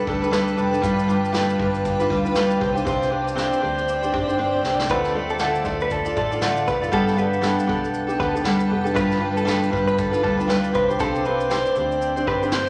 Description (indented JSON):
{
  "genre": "acoustic pop",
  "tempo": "118 BPM",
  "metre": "4/4",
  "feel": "swing 60% on 16ths",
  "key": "G mixolydian",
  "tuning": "A4 = 439 Hz",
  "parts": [
    { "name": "picked steel-string acoustic guitar", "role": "accompaniment", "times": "0.0-12.7 s", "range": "D3 to D5", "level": "-24 LUFS", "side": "equal", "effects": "none" },
    { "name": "granular cloud pad", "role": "sustained chords", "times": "0.0-12.7 s", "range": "C4 to D6", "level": "-30 LUFS", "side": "equal", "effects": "built-in reverb" },
    { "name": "vintage muted fingered electric bass", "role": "bass", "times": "0.0-12.7 s", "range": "F1 to D2", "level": "-35 LUFS", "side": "equal", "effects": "none" },
    { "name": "vintage brush drum kit", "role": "drums", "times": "0.1-12.7 s", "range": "kick drum, shaker, snare drum", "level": "-33 LUFS", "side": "equal", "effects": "none" },
    { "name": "direct-recorded clean electric guitar", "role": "arpeggios", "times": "4.9-12.4 s", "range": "A4 to B4", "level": "-28 LUFS", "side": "equal", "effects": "none" }
  ],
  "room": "wet large studio reverb, RT60 1.4 s",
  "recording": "none",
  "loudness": "-22 LUFS",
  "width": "mono",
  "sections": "0.0-12.7 A section",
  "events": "drum fill 4.4-4.9",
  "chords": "0.0 Gadd9; 0.8 G7; 2.6 Csus2; 4.9 Dm; 6.9 Gadd9; 9.0 G7; 10.7 Csus2"
}